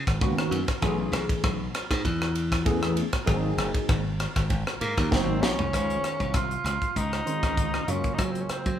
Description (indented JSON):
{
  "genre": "electric jazz fusion",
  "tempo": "98 BPM",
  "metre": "4/4",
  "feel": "swing 53% on 16ths",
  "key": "Db major from 5.7 s",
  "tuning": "A4 = 441 Hz",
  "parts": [
    { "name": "glassy slap bass", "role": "bass", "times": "0.0-8.8 s", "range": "Gb1 to Gb3", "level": "-29 LUFS", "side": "equal", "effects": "none" },
    { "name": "tight funk drum kit", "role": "drums", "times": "0.1-8.8 s", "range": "hi-hat, kick drum, ride cymbal, rim click, snare drum, toms", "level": "-28 LUFS", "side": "equal", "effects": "none" },
    { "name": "bell-like tine electric piano", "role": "accompaniment", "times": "0.2-8.8 s", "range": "Db3 to C5", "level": "-30 LUFS", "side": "equal", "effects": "phaser" },
    { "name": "warm tenor saxophone", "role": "melody", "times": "4.8-8.8 s", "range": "Bb3 to F4", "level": "-30 LUFS", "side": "equal", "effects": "none" }
  ],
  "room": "moderate large studio reverb, RT60 1.2 s",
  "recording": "band playing live in one room",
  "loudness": "-24 LUFS",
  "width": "side -10 dB against mid",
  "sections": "0.0-5.7 A section; 5.7-8.8 B section",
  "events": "drum fill 5.1-5.7",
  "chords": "0.0 Db13sus4; 0.8 Cb13sus4; 3.3 Ab9; 5.7 Dbmaj9; 7.9 Gbmaj9"
}